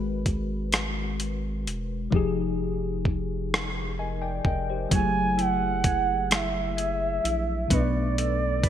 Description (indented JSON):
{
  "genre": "slow six-eight R&B",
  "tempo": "43 BPM (dotted quarters)",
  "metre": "6/8",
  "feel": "straight",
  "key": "unclear",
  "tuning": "A4 = 441 Hz",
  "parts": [
    { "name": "mellow tine electric piano", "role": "accompaniment", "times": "0.0-8.7 s", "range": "B2 to Ab5", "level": "-30 LUFS", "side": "left 5 dB", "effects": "analog chorus" },
    { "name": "round analog bass", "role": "bass", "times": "0.0-8.7 s", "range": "Fb1 to B1", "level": "-31 LUFS", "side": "equal", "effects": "none" },
    { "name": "dusty soul sampler-style drum kit", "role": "drums", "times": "0.3-8.7 s", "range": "hi-hat, kick drum, rim click", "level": "-25 LUFS", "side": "equal", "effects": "overdrive, gated reverb" },
    { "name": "gliding portamento lead", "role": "melody", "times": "4.9-8.7 s", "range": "D5 to Ab5", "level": "-26 LUFS", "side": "right 3 dB", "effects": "chorus, phaser" },
    { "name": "mellow electric guitar", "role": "second line", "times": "4.9-8.7 s", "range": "Gb3 to C#5", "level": "-32 LUFS", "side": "right 5 dB", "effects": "none" }
  ],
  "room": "light reverb, digital ambience",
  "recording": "bright 1980s-style digital production",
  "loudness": "-24 LUFS",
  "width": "side -10 dB against mid",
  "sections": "0.0-8.7 A section",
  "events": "hi-hats muted 2.1-4.9; tine electric piano fill 3.5-4.9",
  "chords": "0.0 Abm9; 2.1 Fm9; 4.9 Gbm9; 7.7 Bm9"
}